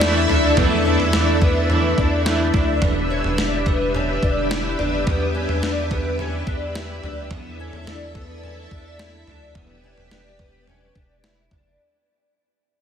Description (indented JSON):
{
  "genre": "dream pop",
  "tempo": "107 BPM",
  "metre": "4/4",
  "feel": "straight",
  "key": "E dorian",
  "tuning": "A4 = 440 Hz",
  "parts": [
    { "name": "clean electric guitar", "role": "accompaniment", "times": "0.0-2.8 s", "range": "E3 to E4", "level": "-26 LUFS", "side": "right 3 dB", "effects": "tremolo, analog chorus" },
    { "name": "string machine, full ensemble", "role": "sustained chords", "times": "0.0-11.8 s", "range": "D4 to E5", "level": "-24 LUFS", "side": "equal", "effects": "ensemble chorus" },
    { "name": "fingerpicked twelve-string acoustic guitar", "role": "arpeggios", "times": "0.0-11.8 s", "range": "B3 to E4", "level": "-25 LUFS", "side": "left 3 dB", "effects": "ensemble chorus, tape echo" },
    { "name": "round analog bass", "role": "bass", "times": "0.0-11.8 s", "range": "E1 to E2", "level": "-25 LUFS", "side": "equal", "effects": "none" },
    { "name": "gated 80s digital drum machine", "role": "drums", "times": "0.0-11.6 s", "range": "kick drum, snare drum, toms", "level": "-23 LUFS", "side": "right 1 dB", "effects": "gated reverb, gated reverb snare" }
  ],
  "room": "light reverb, digital ambience",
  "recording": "none",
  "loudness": "-17 LUFS",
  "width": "side -8 dB against mid",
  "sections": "0.0-11.8 A section",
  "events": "fade-out 0.0-11.8",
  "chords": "0.0 Asus4; 2.8 Em7; 7.3 Asus4/E; 9.6 Em7"
}